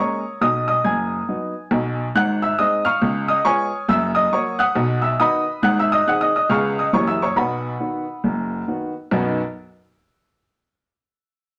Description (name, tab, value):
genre	jazz, stride piano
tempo	138 BPM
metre	4/4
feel	swing 61% on 8ths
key	B major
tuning	A4 = 439 Hz
part	clear upright piano	solo	0.0-9.4 s	F#1 to G#6	-20 LUFS	equal	none
room	moderate studio reverb, RT60 0.7 s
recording	none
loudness	-20 LUFS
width	mono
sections	0.0-9.1 A section; 9.1-10.8 B section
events	none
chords	0.4 B; 2.1 G#7; 3.0 C#7; 3.9 F#7; 4.8 B; 5.6 G#7; 6.5 C#7; 6.9 F#7b9; 7.4 B